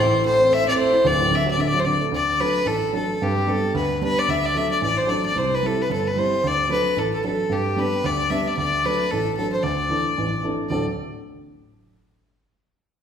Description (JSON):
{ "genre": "celtic folk", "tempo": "224 BPM", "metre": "4/4", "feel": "swing 57% on 8ths", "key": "D mixolydian", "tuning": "A4 = 440 Hz", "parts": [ { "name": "rich fiddle", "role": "melody", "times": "0.0-10.8 s", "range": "G4 to E5", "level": "-21 LUFS", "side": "left 1 dB", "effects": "none" }, { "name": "dark upright piano", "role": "accompaniment", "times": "0.0-10.8 s", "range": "D1 to A4", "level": "-24 LUFS", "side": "right 2 dB", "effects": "none" } ], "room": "wet recital hall reverb, RT60 1.4 s", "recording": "heard from further back in the room, faint mains hum", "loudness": "-19 LUFS", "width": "side -8 dB against mid", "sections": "0.0-2.1 A section; 2.1-10.7 B section; 10.7-11.8 C section", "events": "none", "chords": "0.0 Am; 1.1 D; 3.2 G; 4.3 D; 5.4 C; 6.4 D; 7.5 G; 8.6 D; 9.6 Dsus2; 10.7 D" }